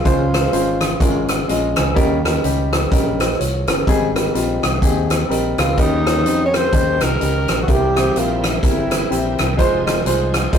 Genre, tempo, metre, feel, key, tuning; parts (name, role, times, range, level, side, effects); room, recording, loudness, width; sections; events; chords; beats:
uptempo gospel; 126 BPM; 4/4; swing 59% on 8ths; A4 = 439 Hz
breathy alto saxophone; melody; 0.0-1.3, 5.6-9.4 s; Eb4 to Db5; -21 LUFS; equal
warm baby grand piano; accompaniment; 0.0-10.6 s; Ab2 to Ab5; -20 LUFS; left 1 dB
modern bright fingered electric bass; bass; 0.0-10.6 s; F1 to F2; -22 LUFS; equal
swinging big-band drum kit; drums; 0.1-10.6 s; hi-hat, kick drum, rim click; -19 LUFS; equal
bright tonewheel organ; sustained chords; 5.8-10.6 s; F3 to Bb4; -30 LUFS; right 3 dB; slow rotary speaker, overdrive, chorus vibrato
light reverb; rough rehearsal-room recording, tube saturation; -15 LUFS; side -8 dB against mid
0.0-10.6 A section
grand piano fill 1.2-2.0
0.1 Dbmaj7; 2.0 Eb7; 3.9 Abmaj7; 5.8 Eb7; 7.7 C7; 9.6 Fm7
| 0.06 0.53 1.01 1.49 | 1.97 2.44 2.92 3.40 | 3.87 4.35 4.83 5.30 | 5.78 6.25 6.73 7.21 | 7.68 8.16 8.63 9.11 | 9.59 10.06 10.54